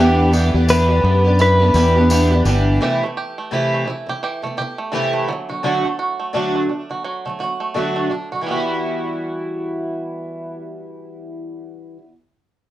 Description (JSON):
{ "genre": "acoustic pop", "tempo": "85 BPM", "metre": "4/4", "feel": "swing 60% on 16ths", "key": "E minor", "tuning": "A4 = 440 Hz", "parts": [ { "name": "direct-recorded clean electric guitar", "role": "melody", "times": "0.0-2.4 s", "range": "G4 to B4", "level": "-16 LUFS", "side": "equal", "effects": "none" }, { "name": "fingerpicked twelve-string acoustic guitar", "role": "accompaniment", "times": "0.0-12.1 s", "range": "C3 to G4", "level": "-20 LUFS", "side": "equal", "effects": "double-tracked left and right" }, { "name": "rich studio string section", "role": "sustained chords", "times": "0.0-2.8 s", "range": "B4 to D6", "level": "-32 LUFS", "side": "right 1 dB", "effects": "none" }, { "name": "bluegrass banjo", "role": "arpeggios", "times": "0.0-12.1 s", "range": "D3 to G4", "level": "-26 LUFS", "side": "right 4 dB", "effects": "none" }, { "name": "fingered electric bass", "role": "bass", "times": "0.0-2.8 s", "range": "G1 to F#2", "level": "-15 LUFS", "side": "equal", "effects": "none" }, { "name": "tambourine", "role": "percussion", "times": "0.3-2.6 s", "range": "none", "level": "-31 LUFS", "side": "left 3 dB", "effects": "none" } ], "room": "moderate studio reverb, RT60 0.6 s", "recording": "worn, warbling old tape, cassette tape, warbly pitch drift", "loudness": "-16 LUFS", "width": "side -14 dB against mid", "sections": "0.0-2.8 A section; 2.8-8.5 B section; 8.5-11.3 C section", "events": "none", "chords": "0.0 Em7; 2.8 C6; 5.3 D; 8.5 Emadd9", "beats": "0.69 1.39 2.10 | 2.80 3.51 4.22 4.92 | 5.63 6.33 7.04 7.75 | 8.46 9.16 9.87 10.57" }